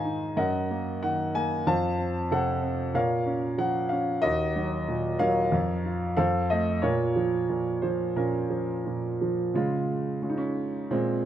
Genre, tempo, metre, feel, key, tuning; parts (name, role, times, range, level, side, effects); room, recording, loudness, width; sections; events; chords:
classical, lyrical solo piano; 91 BPM; 4/4; rubato; Bb minor; A4 = 443 Hz
warm concert grand piano; solo; 0.0-11.3 s; Eb2 to Bb5; -25 LUFS; right 1 dB
light reverb; close, detailed microphones; -25 LUFS; side -11 dB against mid
0.0-9.5 A section; 9.5-11.3 B section
0.4 Ebm/Gb; 1.7 F; 2.9 Bbm; 4.2 Ebm; 5.5 Bbm/F; 6.2 F7; 6.8 Bbm; 9.5 Db